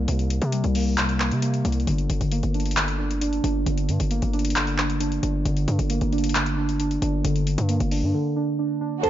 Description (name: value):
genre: hip hop, trap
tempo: 134 BPM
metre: 4/4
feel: half-time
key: G minor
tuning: A4 = 440 Hz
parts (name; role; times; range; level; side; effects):
- muted felt-like synth keys; accompaniment; 0.0-9.1 s; C3 to D4; -25 LUFS; right 1 dB; chorus, phaser
- distorted 808-style bass; bass; 0.0-9.1 s; G1 to C3; -24 LUFS; equal; distortion
- trap drum kit; drums; 0.1-9.1 s; handclaps, hi-hat; -28 LUFS; left 1 dB; none
- small celesta; melody; 9.0-9.1 s; A4 to A5; -20 LUFS; equal; none
- glassy wavetable pluck; second line; 9.0-9.1 s; C5; -26 LUFS; right 13 dB; chorus
- dark symphonic string section; sustained chords; 9.0-9.1 s; D3 to A4; -29 LUFS; right 2 dB; none
room: digital ambience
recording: echo-heavy mix, nothing above 7.5 kHz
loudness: -21 LUFS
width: side -12 dB against mid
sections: 0.0-9.0 A section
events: break 8.1-9.0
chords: 0.0 C5; 1.9 Gm